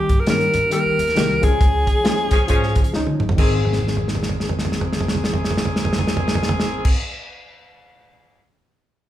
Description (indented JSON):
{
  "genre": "uptempo 1960s-style soul",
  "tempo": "135 BPM",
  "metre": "4/4",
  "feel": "swing 60% on 8ths",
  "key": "Ab major",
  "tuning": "A4 = 441 Hz",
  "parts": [
    { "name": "edgy alto saxophone", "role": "melody", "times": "0.0-2.9 s", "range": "G4 to Bb4", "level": "-20 LUFS", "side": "equal", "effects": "none" },
    { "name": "barky reed electric piano", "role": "accompaniment", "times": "0.0-6.9 s", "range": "Eb3 to Ab4", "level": "-25 LUFS", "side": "left 3 dB", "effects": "overdrive, fast tremolo" },
    { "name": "mellow tonewheel organ", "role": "sustained chords", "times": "0.0-6.9 s", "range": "Eb3 to Ab4", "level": "-33 LUFS", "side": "equal", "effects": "none" },
    { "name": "upright bass", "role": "bass", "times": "0.0-6.9 s", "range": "Gb1 to Db3", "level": "-27 LUFS", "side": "equal", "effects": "none" },
    { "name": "warm soul drum kit", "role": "drums", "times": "0.1-8.4 s", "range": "crash cymbal, hi-hat, kick drum, snare drum, toms", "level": "-19 LUFS", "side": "equal", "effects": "none" },
    { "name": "clear saxophone section", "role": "second line", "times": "2.3-6.9 s", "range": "Eb3 to Ab4", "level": "-27 LUFS", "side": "equal", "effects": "none" }
  ],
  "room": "wet large studio reverb, RT60 0.7 s",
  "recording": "band playing live in one room",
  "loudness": "-17 LUFS",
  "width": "side -12 dB against mid",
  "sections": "0.0-3.4 A section; 3.4-6.9 B section",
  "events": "band accent 1.6-3.4; drum fill 2.9-3.4, 3.6-6.8",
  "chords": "0.0 Eb; 1.4 Db; 3.4 Ab",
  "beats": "0.28 0.72 1.17 | 1.61 2.05 2.50 2.94 | 3.39 3.83 4.28 4.72 | 5.17 5.61 6.05 6.50"
}